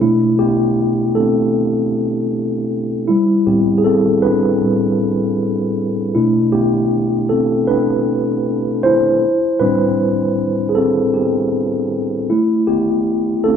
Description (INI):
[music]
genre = soul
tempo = 78 BPM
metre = 4/4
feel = swing 58% on 16ths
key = A minor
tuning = A4 = 441 Hz
[part]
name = mellow tine electric piano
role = solo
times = 0.0-13.6 s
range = A2 to C5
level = -14 LUFS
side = equal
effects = medium stereo tremolo
[sound]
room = moderate studio reverb, RT60 0.8 s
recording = band playing live in one room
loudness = -14 LUFS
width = side -8 dB against mid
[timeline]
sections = 0.0-13.6 A section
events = tine electric piano solo 0.0-13.6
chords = 0.0 Am11/B; 3.1 Am9; 6.2 E7sus4/B; 9.2 Am9; 12.3 A7sus2